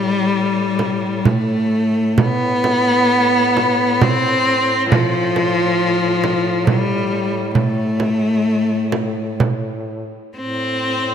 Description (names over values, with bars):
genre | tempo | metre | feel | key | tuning
caucasian folk, Caucasian lament | 62-69 BPM | 3/4 | rubato | A minor | A4 = 440 Hz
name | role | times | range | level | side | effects
clear cello | melody | 0.0-11.1 s | F3 to C4 | -16 LUFS | left 1 dB | tape echo
mellow duduk | drone | 0.0-11.1 s | A2 | -26 LUFS | equal | none
frame drum | percussion | 0.8-9.6 s | none | -19 LUFS | right 4 dB | none
room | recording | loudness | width
wet plate reverb, RT60 2.5 s | dreamy mix soaked in reverb | -15 LUFS | side -8 dB against mid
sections
0.0-10.4 A section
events
none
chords
none